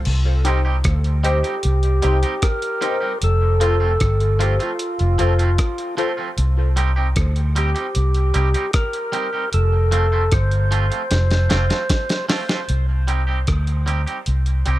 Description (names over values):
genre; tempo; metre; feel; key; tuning
dub reggae; 76 BPM; 4/4; straight; C dorian; A4 = 440 Hz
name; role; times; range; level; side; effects
vintage muted fingered electric bass; bass; 0.1-14.8 s; F1 to D2; -17 LUFS; equal; none
dusty soul sampler-style drum kit; drums; 0.1-14.8 s; crash cymbal, hi-hat, kick drum, rim click, snare drum; -22 LUFS; equal; none
twangy electric guitar; accompaniment; 0.4-14.8 s; F3 to G4; -27 LUFS; right 4 dB; dub echo
filtered dub chord stab; stabs; 0.4-6.2 s; Eb4 to C5; -27 LUFS; left 3 dB; phaser, dub echo
percussive tonewheel organ; melody; 1.3-12.3 s; F4 to C5; -24 LUFS; equal; overdrive, slow rotary speaker, dub echo
room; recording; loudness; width
little or no reverb; none; -17 LUFS; side -15 dB against mid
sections
0.0-12.7 A section; 12.7-14.8 B section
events
drum fill 11.1-12.7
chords
0.1 Cm; 3.2 F; 6.4 Cm; 9.5 F; 12.7 Cm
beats
| 0.06 0.85 1.64 2.43 | 3.22 4.01 4.80 5.58 | 6.38 7.16 7.95 8.74 | 9.53 10.32 11.11 11.90 | 12.69 13.48 14.27